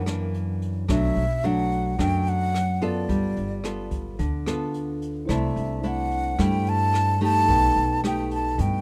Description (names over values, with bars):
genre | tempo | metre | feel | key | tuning
bossa nova | 109 BPM | 4/4 | straight | unclear | A4 = 439 Hz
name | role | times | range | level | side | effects
breathy concert flute | melody | 0.0-8.8 s | D5 to A5 | -28 LUFS | equal | none
nylon-string guitar | accompaniment | 0.0-8.8 s | F#2 to A4 | -29 LUFS | equal | none
upright bass | bass | 0.0-8.8 s | G1 to G2 | -30 LUFS | equal | none
jazz brush drum kit | drums | 0.1-8.7 s | hi-hat, kick drum, rim click | -35 LUFS | equal | none
bright tine electric piano | accompaniment | 5.3-8.8 s | D#4 to A5 | -36 LUFS | equal | none
room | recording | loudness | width
light reverb | none | -24 LUFS | mono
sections
0.0-8.8 A section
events
none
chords
0.0 F#aug7; 0.9 Bm7; 3.1 G9; 5.3 C69; 7.5 B7b13